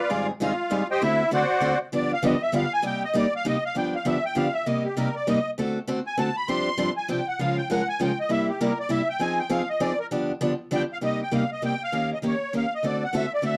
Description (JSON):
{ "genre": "jazz", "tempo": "198 BPM", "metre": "3/4", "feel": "swing 60% on 8ths", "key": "C minor", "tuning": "A4 = 440 Hz", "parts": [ { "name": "musette accordion", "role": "melody", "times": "0.0-13.6 s", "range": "E4 to C6", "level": "-28 LUFS", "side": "equal", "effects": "none" }, { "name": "picked steel-string acoustic guitar", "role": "accompaniment", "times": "0.1-13.5 s", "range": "G2 to Bb4", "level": "-28 LUFS", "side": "equal", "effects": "none" } ], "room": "moderate studio reverb, RT60 0.5 s", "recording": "dark, warm production", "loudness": "-25 LUFS", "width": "mono", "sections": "0.0-3.8 A section; 3.8-11.0 A section; 11.0-13.6 B section", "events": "accordion solo 0.0-11.0", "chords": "0.1 Abmaj7; 1.0 D7; 1.9 G7; 2.8 Cm7; 3.8 G7; 4.7 Cm7; 5.6 D7; 6.5 G7sus4; 7.4 Db6; 8.3 C7; 9.2 Fm7; 10.1 G7; 11.0 Cm7; 11.9 Eb7; 12.8 D7" }